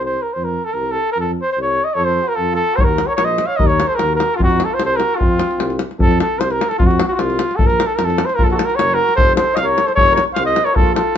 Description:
balkan folk, Balkan brass band; 150 BPM; 2/4; straight; F phrygian dominant; A4 = 440 Hz
warm cornet; melody; 0.0-11.2 s; F4 to F5; -16 LUFS; equal
mellow tuba; bass; 0.0-11.0 s; F1 to F2; -22 LUFS; equal
warm flugelhorn; second line; 2.0-5.8, 8.4-11.2 s; C4 to Db5; -26 LUFS; right 5 dB
davul; percussion; 2.8-11.1 s; -18 LUFS; left 2 dB
moderate studio reverb, RT60 0.6 s; band playing live in one room, nothing above 7.9 kHz; -14 LUFS; side -9 dB against mid
0.0-6.0 A section; 6.0-11.2 B section
0.0 F5; 2.8 Eb5; 4.4 F5; 7.6 Bb5; 9.2 F5
| 0.37 0.77 | 1.17 1.58 | 1.98 2.38 | 2.79 3.19 | 3.59 4.00 | 4.40 4.80 | 5.20 5.60 | 6.00 6.40 | 6.80 7.19 | 7.59 7.99 | 8.38 8.78 | 9.18 9.57 | 9.97 10.36 | 10.76 11.15

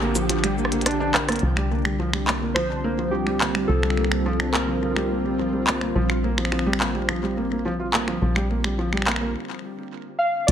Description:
IDM; 106 BPM; 4/4; straight; G minor; A4 = 439 Hz
warbly lo-fi synth keys; melody; 0.0-5.6, 10.2-10.5 s; G4 to F5; -27 LUFS; right 1 dB; chorus, vintage 12-bit sampler grit, tape echo
soft string machine; sustained chords; 0.0-9.4 s; D3 to F4; -28 LUFS; left 1 dB; ensemble chorus
felt-muted upright piano; arpeggios; 0.0-10.5 s; F3 to Bb4; -27 LUFS; right 1 dB; low-pass filter, dub echo
woody FM bass; bass; 0.0-10.5 s; Bb1 to C2; -27 LUFS; equal
flickering grainy texture; texture; 0.1-1.4 s; G4 to G5; -39 LUFS; right 2 dB
glitchy drum kit; drums; 0.2-10.5 s; cabasa, finger snaps, handclaps, hi-hat, rim click; -25 LUFS; equal; ping-pong delay
moderate plate reverb, RT60 1.2 s, digital ambience; heavily compressed radio sound, multiband compression; -20 LUFS; side -9 dB against mid
0.0-1.4 A section; 1.4-10.5 B section
drum fill 0.6-1.4; band accent 1.3; break 9.4-10.5
0.0 Gm7/Bb; 1.4 C9sus4; 6.0 Gm7/Bb
0.29 0.86 | 1.43 1.99 2.56 3.12 | 3.69 4.26 4.82 5.39 | 5.96 6.52 7.09 7.65 | 8.22 8.79 9.35 9.92 | 10.48

